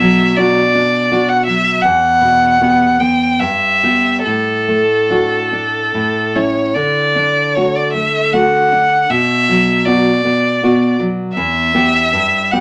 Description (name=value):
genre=romantic duo for violin and classical guitar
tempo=70-84 BPM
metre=3/4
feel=rubato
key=D major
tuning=A4 = 439 Hz
part: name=clear violin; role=melody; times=0.0-12.6 s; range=A4 to G5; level=-16 LUFS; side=equal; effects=none
part: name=nylon-string guitar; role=accompaniment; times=0.0-12.6 s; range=E2 to G4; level=-18 LUFS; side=equal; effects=none
room=wet club ambience, RT60 0.5 s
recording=none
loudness=-14 LUFS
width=mono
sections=0.0-12.6 A section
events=none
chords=0.0 Bm; 1.8 Em; 3.4 Em/G; 4.3 D/A; 5.9 A; 6.8 D; 9.1 Bm; 11.3 Em